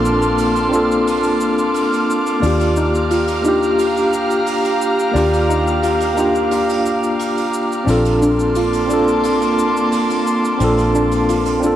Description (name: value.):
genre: sunset chillout.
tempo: 88 BPM.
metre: 4/4.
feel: straight.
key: Eb lydian.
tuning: A4 = 440 Hz.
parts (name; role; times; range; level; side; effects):
tine electric piano; accompaniment; 0.0-11.8 s; Bb3 to D5; -17 LUFS; equal; medium tremolo, auto-pan, cassette tape, tape echo.
airy breathy pad; sustained chords; 0.0-11.8 s; Bb3 to D6; -19 LUFS; equal; chorus, cassette tape.
vintage muted fingered electric bass; bass; 0.0-11.8 s; Bb1 to Eb2; -22 LUFS; equal; none.
wind-like tuned noise texture; texture; 0.0-11.8 s; F6; -28 LUFS; right 1 dB; built-in reverb, cassette tape.
cabasa and hi-hat; drums; 0.1-11.8 s; none; -32 LUFS; right 2 dB; cassette tape.
soft round pluck; arpeggios; 2.4-11.8 s; C4 to F4; -24 LUFS; left 1 dB; none.
room: moderate lush hall reverb, RT60 2.1 s.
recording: home recording on cassette.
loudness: -14 LUFS.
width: side -11 dB against mid.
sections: 0.0-11.8 A section.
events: none.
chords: 0.0 Bbmaj9; 2.4 Ebmaj9; 7.9 Bbmaj9.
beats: 0.38 1.06 1.75 | 2.43 3.11 3.79 4.47 | 5.16 5.84 6.52 7.20 | 7.88 8.56 9.24 9.93 | 10.61 11.29.